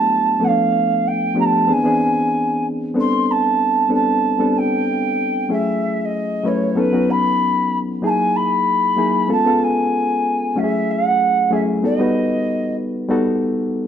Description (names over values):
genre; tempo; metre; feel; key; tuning
soul; 95 BPM; 4/4; swing 54% on 16ths; unclear; A4 = 440 Hz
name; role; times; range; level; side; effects
alto ocarina; melody; 0.0-12.8 s; B4 to C6; -18 LUFS; right 2 dB; none
bright reed electric piano; accompaniment; 0.0-13.9 s; E3 to B4; -18 LUFS; left 1 dB; none
room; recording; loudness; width
moderate stone room reverb, RT60 1.0 s; band playing live in one room; -16 LUFS; side -8 dB against mid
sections
0.0-13.1 A section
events
none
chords
0.4 Bm7b5; 1.7 E7b13; 3.0 Am11; 5.5 F#m9; 6.8 B9; 8.0 Emaj9#11; 9.3 C#7b13; 10.6 F#m9; 11.8 B7b13